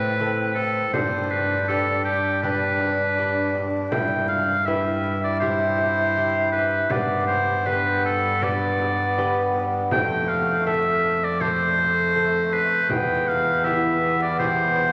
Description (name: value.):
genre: classical, renaissance-style consort dance.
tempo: 80 BPM.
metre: 4/4.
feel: straight.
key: unclear.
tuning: A4 = 439 Hz.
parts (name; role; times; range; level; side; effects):
clear oboe; melody; 0.0-14.9 s; G4 to G5; -25 LUFS; equal; none.
lute; accompaniment; 0.0-14.9 s; E2 to B4; -32 LUFS; equal; none.
warm bassoon; accompaniment; 0.0-14.9 s; A3 to E4; -28 LUFS; equal; none.
rich cello; bass; 0.0-14.9 s; E2 to A2; -32 LUFS; equal; none.
frame drum; percussion; 0.6-14.9 s; none; -36 LUFS; equal; none.
room: wet church reverb, RT60 3.5 s.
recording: vinyl crackle.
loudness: -22 LUFS.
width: mono.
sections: 0.0-14.9 A section.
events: none.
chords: 0.0 Am; 0.9 G; 3.9 Em/G; 6.9 G; 9.9 F; 12.9 Em.